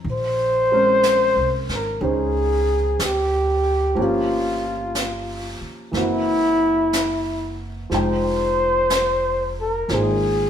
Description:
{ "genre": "jazz ballad", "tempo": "61 BPM", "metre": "4/4", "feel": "swing 68% on 8ths", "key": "unclear", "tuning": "A4 = 436 Hz", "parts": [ { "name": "warm baby grand piano", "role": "accompaniment", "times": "0.0-10.5 s", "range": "Fb3 to G5", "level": "-26 LUFS", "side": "right 1 dB", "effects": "none" }, { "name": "upright bass", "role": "bass", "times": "0.0-10.5 s", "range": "F1 to D2", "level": "-27 LUFS", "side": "equal", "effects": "none" }, { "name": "mellow flugelhorn", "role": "melody", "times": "0.1-10.5 s", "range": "Fb4 to C5", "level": "-20 LUFS", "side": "left 1 dB", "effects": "none" }, { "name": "jazz brush drum kit", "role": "drums", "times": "0.1-10.5 s", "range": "brushed snare drum, hi-hat, snare drum", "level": "-30 LUFS", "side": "equal", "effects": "none" } ], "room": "wet stone room reverb, RT60 1.1 s", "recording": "band playing live in one room", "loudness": "-18 LUFS", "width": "side -9 dB against mid", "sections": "0.0-10.5 A section", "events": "none", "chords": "0.0 Bbm9; 4.0 Gm7b5; 5.9 Gb7#11; 7.9 Fm9" }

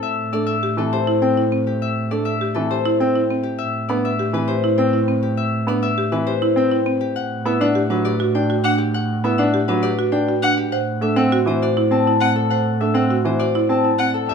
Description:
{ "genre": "classical, minimalist pattern music", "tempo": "101 BPM", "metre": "3/4", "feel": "straight", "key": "unclear", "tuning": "A4 = 440 Hz", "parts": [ { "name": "Celtic harp", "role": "melody", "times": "0.0-14.3 s", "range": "G4 to A5", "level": "-22 LUFS", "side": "left 8 dB", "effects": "none" }, { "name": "rich double bass", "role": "bass", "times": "0.0-14.3 s", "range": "E2 to A2", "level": "-24 LUFS", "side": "right 2 dB", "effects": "none" }, { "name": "clear baby grand piano", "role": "accompaniment", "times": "0.3-13.9 s", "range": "E3 to D4", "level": "-22 LUFS", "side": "equal", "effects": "none" }, { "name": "buzzing marimba with medium hard mallets", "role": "arpeggios", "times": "0.3-14.2 s", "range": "C4 to C5", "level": "-23 LUFS", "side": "right 5 dB", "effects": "none" }, { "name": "rich violin", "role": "arpeggios", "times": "8.6-14.1 s", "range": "F#5", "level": "-21 LUFS", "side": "left 2 dB", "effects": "none" }, { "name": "clear soprano saxophone", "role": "second line", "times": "14.3 s", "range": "G4", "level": "-42 LUFS", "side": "right 6 dB", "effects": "none" }, { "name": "warm studio violin section", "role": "sustained chords", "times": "14.3 s", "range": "D4 to G4", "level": "-28 LUFS", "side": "left 5 dB", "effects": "none" } ], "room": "light reverb", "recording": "minimal, uncompressed stereo recording", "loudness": "-17 LUFS", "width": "side -6 dB against mid", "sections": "0.0-14.3 A section", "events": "none", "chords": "0.0 Am7; 3.6 Cmaj7/A; 7.2 Gmaj7/A; 10.7 D7/A" }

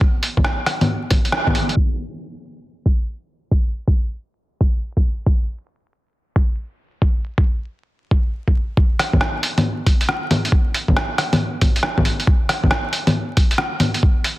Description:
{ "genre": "future garage", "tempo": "137 BPM", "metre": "4/4", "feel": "swing 65% on 16ths", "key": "none", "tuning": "none", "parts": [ { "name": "electronic kick drum", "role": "drums", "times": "0.0-14.1 s", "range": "none", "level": "-17 LUFS", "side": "equal", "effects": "overdrive" }, { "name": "lo-fi sampler-style drum kit", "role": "drums", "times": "0.2-1.8, 9.0-14.4 s", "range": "bongos, hi-hat, rim click", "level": "-19 LUFS", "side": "equal", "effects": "overdrive, low-pass filter on hats, soft clipping on snare, low-pass filter on snare, low-pass filter on perc, low-pass filter on room" } ], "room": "light reverb", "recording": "dense, heavily limited modern master, vinyl crackle, low-pass filter", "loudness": "-17 LUFS", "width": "side -17 dB against mid", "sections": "0.0-1.8 A section; 1.8-8.8 B section; 8.8-14.4 C section", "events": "band accent 1.3; filter sweep 1.8-8.8", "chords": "none" }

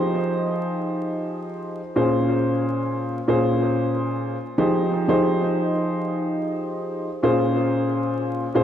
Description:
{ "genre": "hip hop", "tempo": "91 BPM", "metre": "4/4", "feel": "swing 55% on 16ths", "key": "Bb minor", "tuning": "A4 = 440 Hz", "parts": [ { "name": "dark upright piano", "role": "solo", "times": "0.0-8.6 s", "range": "Bb2 to C5", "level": "-20 LUFS", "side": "equal", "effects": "diffuse ambient delay" } ], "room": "wet plate reverb, RT60 2.9 s", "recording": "dreamy mix soaked in reverb, vinyl crackle", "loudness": "-20 LUFS", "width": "side -9 dB against mid", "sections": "0.0-1.9 A section; 1.9-8.6 A section", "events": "none", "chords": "0.0 Fm9; 1.9 Bbm9; 4.6 Fm9; 7.2 Bbm9" }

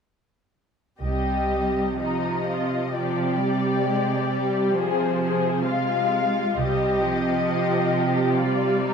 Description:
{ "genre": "classical, slow romantic movement for string orchestra", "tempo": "62-68 BPM", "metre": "3/4", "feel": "rubato", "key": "C minor", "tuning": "A4 = 440 Hz", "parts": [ { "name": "muted symphonic violin section", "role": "melody", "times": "1.0-8.9 s", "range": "C5 to F5", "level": "-28 LUFS", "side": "left 6 dB", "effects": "none" }, { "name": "muted symphonic violin section", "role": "second line", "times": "1.0-8.9 s", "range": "Eb4 to Ab4", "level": "-27 LUFS", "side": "left 2 dB", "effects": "none" }, { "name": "muted symphonic viola section", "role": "accompaniment", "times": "1.0-8.9 s", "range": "F3 to Ab3", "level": "-26 LUFS", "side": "right 1 dB", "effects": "none" }, { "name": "muted symphonic cello section", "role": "bass", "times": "1.0-8.9 s", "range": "C3", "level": "-26 LUFS", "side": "right 3 dB", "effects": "none" }, { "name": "muted symphonic double bass section", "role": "bass", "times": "1.0-1.9, 6.6-7.4 s", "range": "C2", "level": "-30 LUFS", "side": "right 2 dB", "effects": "none" } ], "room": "moderate scoring stage reverb, RT60 2.0 s", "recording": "minimal, uncompressed stereo recording", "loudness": "-21 LUFS", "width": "side -6 dB against mid", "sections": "1.0-8.9 A section", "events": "none", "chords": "1.0 Cm; 3.9 Dm7b5/C; 6.6 Cm" }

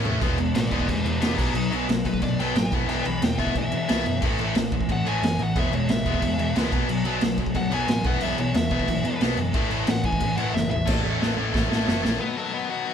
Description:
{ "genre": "punk rock", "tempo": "180 BPM", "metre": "4/4", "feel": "straight", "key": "E major", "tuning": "A4 = 441 Hz", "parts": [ { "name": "distorted electric guitar", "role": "riff", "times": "0.0-12.9 s", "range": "A2 to A4", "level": "-28 LUFS", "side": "left 10 dB", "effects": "overdrive" }, { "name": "sludgy distorted guitar", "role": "riff", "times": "0.0-12.2 s", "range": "E2 to B3", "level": "-29 LUFS", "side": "right 8 dB", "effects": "overdrive" }, { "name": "overdriven picked electric bass", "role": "bass", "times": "0.0-12.2 s", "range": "E1 to B2", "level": "-30 LUFS", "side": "right 1 dB", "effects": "none" }, { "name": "raw garage drum kit", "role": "drums", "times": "0.1-12.1 s", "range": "crash cymbal, kick drum, snare drum, toms", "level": "-25 LUFS", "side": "equal", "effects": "none" }, { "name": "nasal lead guitar with a parked wah", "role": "melody", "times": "0.5-12.9 s", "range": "A3 to B5", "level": "-30 LUFS", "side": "left 2 dB", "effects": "overdrive" } ], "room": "light reverb", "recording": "band playing live in one room", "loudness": "-21 LUFS", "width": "side -8 dB against mid", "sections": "0.2-10.9 A section; 10.9-12.2 B section", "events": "drum fill 0.0, 10.5-10.9, 10.9-12.2; lead electric guitar solo 0.2-10.9", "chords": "0.2 E; 1.4 B; 2.7 E5/B; 4.2 A5; 5.6 E; 6.7 B5; 8.1 E5/B; 9.5 A5; 10.9 A; 12.2 B" }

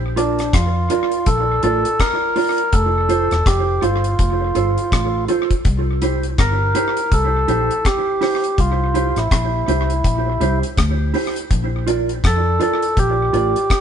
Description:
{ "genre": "roots reggae", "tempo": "82 BPM", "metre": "4/4", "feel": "swing 60% on 16ths", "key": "C mixolydian", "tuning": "A4 = 440 Hz", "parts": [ { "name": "vintage muted fingered electric bass", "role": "bass", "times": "0.0-13.5 s", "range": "E1 to F2", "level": "-20 LUFS", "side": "left 1 dB", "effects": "none" }, { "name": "percussive tonewheel organ", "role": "melody", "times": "0.2-13.8 s", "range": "D4 to Bb4", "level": "-20 LUFS", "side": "equal", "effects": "overdrive" }, { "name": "mellow electric guitar", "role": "accompaniment", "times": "0.2-13.6 s", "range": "E4 to D5", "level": "-22 LUFS", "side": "right 4 dB", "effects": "vibrato effect, tape echo" }, { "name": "deep reggae drum kit", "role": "drums", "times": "0.2-13.8 s", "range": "hi-hat, kick drum, rim click", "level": "-21 LUFS", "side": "left 1 dB", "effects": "tape echo" } ], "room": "moderate stone room reverb, RT60 1.2 s", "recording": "band playing live in one room, nothing above 10.4 kHz", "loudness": "-15 LUFS", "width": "side -8 dB against mid", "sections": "0.0-13.8 A section", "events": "none", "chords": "0.0 Bb; 2.7 F; 5.7 C; 11.5 Bb" }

